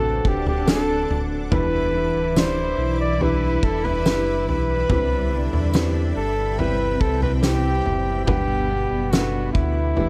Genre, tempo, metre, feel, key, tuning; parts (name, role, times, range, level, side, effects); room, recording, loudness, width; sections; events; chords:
pop ballad; 71 BPM; 4/4; straight; E minor; A4 = 440 Hz
warm flugelhorn; melody; 0.0-10.1 s; E4 to D5; -27 LUFS; equal
dark chamber cello section; second line; 0.0-10.1 s; A2 to E4; -31 LUFS; equal
felt-muted upright piano; accompaniment; 0.0-10.1 s; C3 to F#5; -31 LUFS; equal
granular cloud pad; sustained chords; 0.0-10.1 s; G3 to D6; -38 LUFS; equal; built-in reverb
flamenco guitar; arpeggios; 0.0-10.1 s; E2 to F#4; -35 LUFS; equal
sub bass with octave; bass; 0.0-10.1 s; D1 to E2; -27 LUFS; equal
loose indie drum kit; drums; 0.2-10.1 s; kick drum, snare drum, toms; -26 LUFS; equal
tambourine; percussion; 0.7-9.3 s; -40 LUFS; equal
small room ambience; -21 LUFS; mono
0.0-10.1 A section
0.0 D7; 1.5 Em7; 4.9 Cmaj7; 8.3 Gmaj7